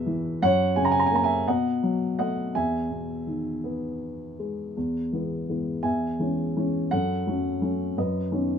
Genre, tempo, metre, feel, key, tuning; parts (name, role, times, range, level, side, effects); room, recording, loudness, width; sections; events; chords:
classical, lyrical solo piano; 56 BPM (dotted quarters); 6/8; rubato; E major; A4 = 439 Hz
dark baby grand piano; solo; 0.0-8.6 s; E2 to A#5; -24 LUFS; equal
light reverb; minimal, uncompressed stereo recording; -24 LUFS; side -7 dB against mid
0.0-4.8 A section; 4.8-8.6 B section
0.4 F#; 1.5 B7; 2.5 Emaj7; 4.8 E; 5.8 C#m/E; 6.9 F#m; 8.0 Badd9/F#